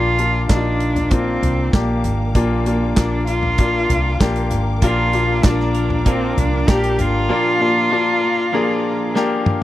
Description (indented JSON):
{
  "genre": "piano-driven pop",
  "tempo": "97 BPM",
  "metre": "4/4",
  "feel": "straight",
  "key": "unclear",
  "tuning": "A4 = 440 Hz",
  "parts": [
    { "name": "warm cello", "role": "melody", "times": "0.0-9.5 s", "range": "Bb3 to G4", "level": "-20 LUFS", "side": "right 1 dB", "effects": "none" },
    { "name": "bright upright piano", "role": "accompaniment", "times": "0.0-9.6 s", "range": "Bb2 to Ab4", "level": "-21 LUFS", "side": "left 4 dB", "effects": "none" },
    { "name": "dark symphonic string section", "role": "sustained chords", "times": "0.0-9.6 s", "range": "Bb4 to D6", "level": "-34 LUFS", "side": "left 1 dB", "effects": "none" },
    { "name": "vintage muted fingered electric bass", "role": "bass", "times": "0.0-7.3 s", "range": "Ab1 to C2", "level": "-21 LUFS", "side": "equal", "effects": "none" },
    { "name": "natural country drum kit", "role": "drums", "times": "0.2-9.6 s", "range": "handclaps, hi-hat, kick drum, snare drum, toms", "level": "-18 LUFS", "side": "equal", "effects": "none" },
    { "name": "clean electric guitar", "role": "riff", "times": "4.8-9.6 s", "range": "Bb2 to Bb4", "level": "-26 LUFS", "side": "right 6 dB", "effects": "spring reverb" }
  ],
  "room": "little or no reverb",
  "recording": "dry, close 1970s-style studio recording",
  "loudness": "-15 LUFS",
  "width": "side -14 dB against mid",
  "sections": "0.0-9.6 A section",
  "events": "drum fill 9.2-9.6",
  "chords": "0.0 Bb",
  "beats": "0.49 1.11 1.73 | 2.35 2.97 3.59 4.21 | 4.83 5.44 6.06 6.68 | 7.30 7.92 8.54 9.15"
}